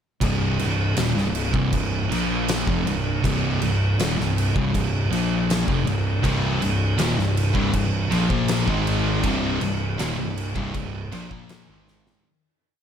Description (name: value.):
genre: stoner and doom metal.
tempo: 80 BPM.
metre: 4/4.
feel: straight.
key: C minor.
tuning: A4 = 442 Hz.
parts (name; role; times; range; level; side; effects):
thick fuzz guitar; riff; 0.2-12.2 s; C2 to Bb3; -26 LUFS; left 7 dB; distortion.
thick fuzz guitar; riff; 0.2-12.2 s; C2 to Bb3; -25 LUFS; right 6 dB; distortion.
fuzz picked electric bass; bass; 0.2-12.2 s; C1 to Bb1; -28 LUFS; equal; overdrive.
oversized low-tuned drum kit; drums; 0.2-12.2 s; crash cymbal, kick drum, snare drum; -26 LUFS; equal; none.
tight distorted guitar; riff; 6.2-12.3 s; C2 to Bb3; -30 LUFS; equal; distortion.
room: light reverb.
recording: none.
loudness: -20 LUFS.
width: side -8 dB against mid.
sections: 0.2-12.3 riff.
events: fade-out 9.3-12.3; drum fill 11.9-12.3.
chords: 0.2 Cm.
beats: | 0.21 0.97 1.73 2.48 | 3.24 3.99 4.75 5.50 | 6.25 7.00 7.75 8.50 | 9.25 10.00 10.75 11.51.